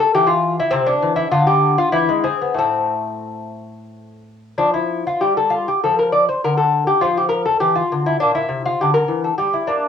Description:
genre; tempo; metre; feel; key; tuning
classical, baroque-style dance for lute; 88-103 BPM; 3/4; rubato; A minor; A4 = 440 Hz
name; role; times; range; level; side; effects
lute; solo; 0.0-9.9 s; A2 to D5; -16 LUFS; left 2 dB; cassette tape
room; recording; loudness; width
light reverb; home recording on cassette; -15 LUFS; side -8 dB against mid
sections
0.0-4.6 A section; 4.6-9.9 A section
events
none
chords
0.1 N.C.; 0.7 Cadd9; 1.3 N.C.; 1.9 E; 2.6 Am; 4.6 Fmaj9; 5.8 N.C.; 6.4 Dmadd11; 7.6 Dmadd9; 8.2 Em7b5/Bb

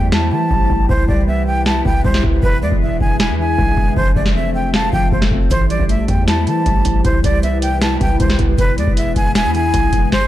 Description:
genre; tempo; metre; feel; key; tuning
hip hop, trap; 156 BPM; 4/4; half-time; unclear; A4 = 440 Hz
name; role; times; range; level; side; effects
breathy jazz flute; melody; 0.0-10.3 s; B4 to A5; -20 LUFS; equal; ping-pong delay
mellow electric guitar; accompaniment; 0.0-10.1 s; E3 to F4; -22 LUFS; equal; analog chorus
warbly tape-like pad; sustained chords; 0.0-10.1 s; C3 to G5; -26 LUFS; equal; chorus, built-in reverb
hard-hitting 808-style bass; bass; 0.0-10.1 s; E1 to E3; -19 LUFS; equal; none
booming analog drum machine; drums; 0.1-10.3 s; hi-hat, kick drum, snare drum; -17 LUFS; equal; none
room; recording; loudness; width
digital ambience; dark, warm production; -13 LUFS; side -13 dB against mid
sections
0.0-10.3 A section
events
break 0.0-5.5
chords
0.0 Am7; 0.9 Cmaj7; 2.4 E7; 4.0 Fmaj7; 5.5 Am7; 7.0 Cmaj7; 8.6 E7

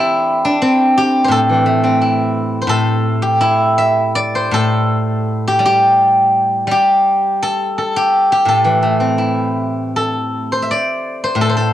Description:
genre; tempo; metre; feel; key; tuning
chinese traditional, Chinese solo plucked strings; 79-90 BPM; 2/4; rubato; A yu mode; A4 = 440 Hz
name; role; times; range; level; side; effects
steel-string zither; solo; 0.0-11.7 s; A2 to G5; -12 LUFS; equal; cassette tape
room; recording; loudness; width
light reverb, small room ambience; home recording on cassette; -12 LUFS; side -12 dB against mid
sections
0.0-10.0 A section; 10.0-11.7 B section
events
none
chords
none

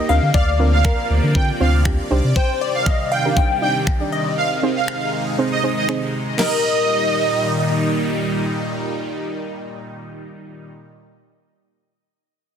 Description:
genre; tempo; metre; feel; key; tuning
dance-pop; 119 BPM; 4/4; straight; Eb major; A4 = 440 Hz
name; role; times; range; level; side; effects
glassy wavetable pluck; melody; 0.0-10.7 s; Bb4 to G5; -23 LUFS; left 5 dB; chorus, ping-pong delay
soft round pluck; accompaniment; 0.0-10.7 s; Bb3 to D5; -24 LUFS; right 3 dB; chorus, sidechain pumping
supersaw pad; sustained chords; 0.0-10.7 s; Bb2 to D5; -24 LUFS; equal; phaser, sidechain pumping
warm sub bass; bass; 0.1-2.3 s; C2 to D3; -17 LUFS; equal; sidechain pumping
soft supersaw; melody; 0.3-7.9 s; Eb5 to G5; -23 LUFS; right 4 dB; sidechain pumping, ping-pong delay
pop drum kit; drums; 0.3-6.5 s; crash cymbal, finger snaps, kick drum, snare drum; -21 LUFS; equal; soft clipping on snare
room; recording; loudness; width
light reverb; dense, heavily limited modern master; -16 LUFS; side -8 dB against mid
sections
0.0-6.4 A section; 6.4-10.4 B section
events
none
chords
0.1 Bbadd9; 2.1 Cmadd9; 4.4 Ab; 6.4 Eb

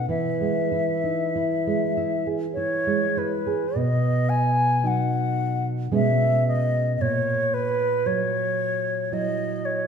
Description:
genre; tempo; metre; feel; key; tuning
romantic duo for flute and classical guitar; 48-59 BPM; 3/4; rubato; E major, B major from 3.8 s; A4 = 439 Hz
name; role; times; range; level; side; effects
bright baroque flute; melody; 0.0-9.9 s; B4 to G#5; -24 LUFS; left 2 dB; none
nylon-string guitar; accompaniment; 0.0-9.9 s; A#2 to G#4; -24 LUFS; right 2 dB; none
room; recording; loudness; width
wet scoring stage reverb, RT60 1.5 s; minimal, uncompressed stereo recording; -21 LUFS; side -6 dB against mid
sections
0.0-3.8 A section; 3.8-9.9 B section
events
none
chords
0.1 E; 3.8 B; 5.9 C#m7/B; 7.0 F#7/A#

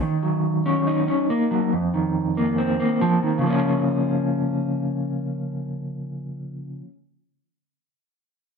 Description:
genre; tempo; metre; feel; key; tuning
hip hop; 140 BPM; 4/4; half-time; Bb minor; A4 = 440 Hz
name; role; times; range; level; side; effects
mellow electric guitar; accompaniment; 0.0-6.9 s; F2 to Eb4; -21 LUFS; equal; tremolo
room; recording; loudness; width
light reverb, digital ambience; dense, heavily limited modern master; -20 LUFS; side -5 dB against mid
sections
0.0-3.4 A section; 3.4-6.9 B section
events
none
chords
0.0 Ebm7; 1.7 F7sus4; 3.4 Bbm

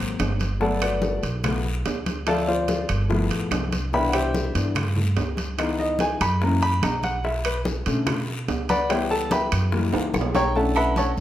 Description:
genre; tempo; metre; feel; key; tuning
Afro-Cuban jazz; 145 BPM; 4/4; straight; B minor; A4 = 437 Hz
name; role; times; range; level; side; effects
warm concert grand piano; accompaniment; 0.0-11.2 s; B2 to C#6; -24 LUFS; left 2 dB; none
upright bass; bass; 0.0-11.2 s; G1 to B2; -26 LUFS; right 1 dB; none
bongos; percussion; 0.2-10.4 s; none; -33 LUFS; left 3 dB; none
claves; percussion; 0.2-11.0 s; none; -38 LUFS; right 6 dB; none
congas; percussion; 0.2-11.2 s; none; -32 LUFS; left 1 dB; none
guiro; percussion; 0.2-11.2 s; none; -39 LUFS; left 4 dB; none
timbales and agogo bells; percussion; 0.2-11.2 s; none; -31 LUFS; right 6 dB; none
room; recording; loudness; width
moderate large studio reverb, RT60 1.3 s; none; -21 LUFS; side -12 dB against mid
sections
0.0-10.6 A section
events
grand piano solo 0.0-11.2; drum fill 9.9-10.6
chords
0.0 G#9; 0.6 Gmaj9; 2.3 Dm7; 3.1 G13; 3.9 Cmaj7; 5.6 C#m7; 6.4 F#7; 7.2 Bm7; 8.9 C#m7b5; 9.7 F#7b9; 10.6 Bm11

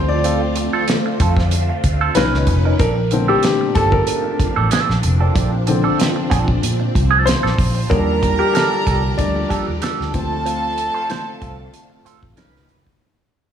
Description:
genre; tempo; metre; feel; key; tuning
lush 1970s-style soul; 94 BPM; 4/4; swing 54% on 16ths; Bb major; A4 = 440 Hz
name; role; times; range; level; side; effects
warm baby grand piano; accompaniment; 0.0-13.0 s; A#2 to D5; -21 LUFS; left 4 dB; none
phased string machine; sustained chords; 0.0-13.0 s; Bb2 to B4; -25 LUFS; right 1 dB; ensemble chorus, phaser
vintage muted fingered electric bass; bass; 0.0-12.9 s; F1 to Bb2; -19 LUFS; equal; none
clean electric guitar; riff; 0.1-12.9 s; C4 to C5; -22 LUFS; right 8 dB; wah
damped 70s drum kit; drums; 0.2-13.0 s; hi-hat, kick drum, snare drum; -20 LUFS; right 1 dB; none
warm studio violin section; second line; 7.9-12.7 s; A4 to B5; -23 LUFS; right 3 dB; none
room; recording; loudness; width
light reverb, studio reverb; none; -15 LUFS; side -9 dB against mid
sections
0.0-7.9 A section; 7.9-13.0 B section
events
grand piano solo 0.0-7.9, 7.9-13.0; fade-out 7.9-13.0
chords
0.0 Dm7; 2.2 Bmaj9; 2.8 Bbmaj9; 7.9 Ebmaj9#11; 10.1 Dm7; 12.4 Bmaj9

